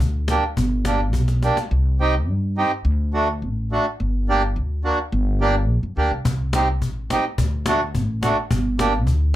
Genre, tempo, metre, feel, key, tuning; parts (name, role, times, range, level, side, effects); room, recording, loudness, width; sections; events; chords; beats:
klezmer; 106 BPM; 2/4; straight; G harmonic minor; A4 = 440 Hz
upright bass; bass; 0.0-9.4 s; G1 to G2; -21 LUFS; equal
cajon; drums; 0.0-1.7, 6.3-9.2 s; -25 LUFS; left 2 dB
accordion; accompaniment; 0.3-8.9 s; A3 to G4; -21 LUFS; right 2 dB
light reverb; -19 LUFS; side -14 dB against mid
0.0-1.7 A section; 1.7-9.4 A section
drum fill 1.1-1.7
0.0 Gm; 1.7 Cm; 2.9 D; 4.0 Gm; 6.3 Cm; 7.4 D; 8.5 Gm
0.01 | 0.58 1.15 | 1.72 2.29 | 2.86 3.42 | 3.99 4.56 | 5.12 5.69 | 6.25 6.82 | 7.38 7.95 | 8.51 9.07